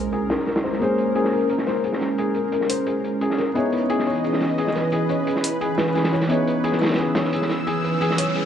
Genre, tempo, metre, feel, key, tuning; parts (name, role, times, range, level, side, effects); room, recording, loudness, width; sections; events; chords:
liquid drum and bass; 175 BPM; 4/4; straight; A4 = 438 Hz
dark baby grand piano; accompaniment; 0.0-8.5 s; Bb3 to Db5; -26 LUFS; left 3 dB; vintage 12-bit sampler grit, dub echo
lush unison pad; sustained chords; 0.0-8.5 s; Fb3 to Fb6; -23 LUFS; right 2 dB; chorus
felt-muted upright piano; arpeggios; 0.0-8.5 s; Ab4 to Db5; -25 LUFS; left 3 dB; low-pass filter, dub echo
crunchy breakbeat drum kit; drums; 0.1-8.4 s; hi-hat, snare drum; -27 LUFS; equal; high-pass filter on hats, low-pass filter on hats, high-pass filter on snare, low-pass filter on snare, high-pass filter on room, low-pass filter on room
electronic hi-hat; drums; 2.7-2.8, 5.4-5.5, 8.2-8.3 s; -27 LUFS; equal
riser; sound effects; 7.6-8.5 s; -34 LUFS; right 2 dB
moderate lush hall reverb, RT60 2.1 s; dark, warm production; -19 LUFS; side -9 dB against mid
0.0-8.5 A section
filter sweep on felt piano 0.0-8.5; riser 7.6-8.5
0.0 Bbm9; 3.6 Dbm9